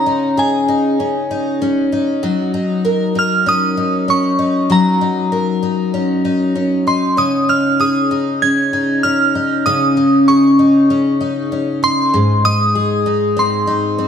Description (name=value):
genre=dream pop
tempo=97 BPM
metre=4/4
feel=straight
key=Db major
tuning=A4 = 440 Hz
part: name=glassy synth bell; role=melody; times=0.0-14.1 s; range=Ab5 to Ab6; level=-17 LUFS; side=right 1 dB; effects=chorus, ping-pong delay
part: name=picked twelve-string acoustic guitar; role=arpeggios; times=0.0-14.1 s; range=Ab2 to Bb4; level=-14 LUFS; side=left 1 dB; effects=wide subtle chorus, ping-pong delay
room=wet concert hall reverb, RT60 2.2 s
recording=dark, warm production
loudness=-13 LUFS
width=side -8 dB against mid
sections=0.0-14.1 A section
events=none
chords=0.0 Dbsus2; 2.2 Gb6; 7.2 Dbsus2; 12.1 Ab